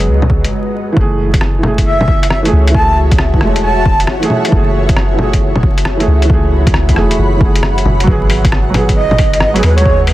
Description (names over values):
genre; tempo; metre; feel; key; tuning
future garage; 135 BPM; 4/4; swing 67% on 16ths; F# dorian; A4 = 440 Hz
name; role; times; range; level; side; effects
felt-muted upright piano; accompaniment; 0.0-10.1 s; E3 to G#4; -17 LUFS; right 2 dB; vintage 12-bit sampler grit, sidechain pumping, tape echo
ethereal airy pad; sustained chords; 0.0-10.1 s; G#3 to B5; -21 LUFS; left 2 dB; ensemble chorus, built-in reverb, tremolo, sidechain pumping
soft 808-style bass; bass; 0.0-10.1 s; E1 to D#2; -14 LUFS; equal; tube saturation, sidechain pumping
lo-fi sampler-style drum kit; drums; 0.0-10.1 s; bongos, hi-hat, rim click; -17 LUFS; left 1 dB; vintage 12-bit sampler grit, soft clipping on snare
electronic kick drum; drums; 0.3-10.0 s; none; -14 LUFS; equal; vintage 12-bit sampler grit
breathy flute-like synth lead; melody; 1.9-4.0, 9.0-10.0 s; B4 to A5; -17 LUFS; right 1 dB; lush chorus, analog delay
room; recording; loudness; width
little or no reverb; dense, heavily limited modern master, vinyl crackle; -9 LUFS; side -15 dB against mid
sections
1.0-10.1 A section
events
stop 0.5-1.0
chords
0.0 G#m7; 1.0 F#m9; 8.1 G#m7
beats
0.08 0.52 | 0.96 1.41 1.85 2.30 | 2.74 3.19 3.63 4.08 | 4.52 4.96 5.41 5.85 | 6.30 6.74 7.19 7.63 | 8.08 8.52 8.96 9.41 | 9.85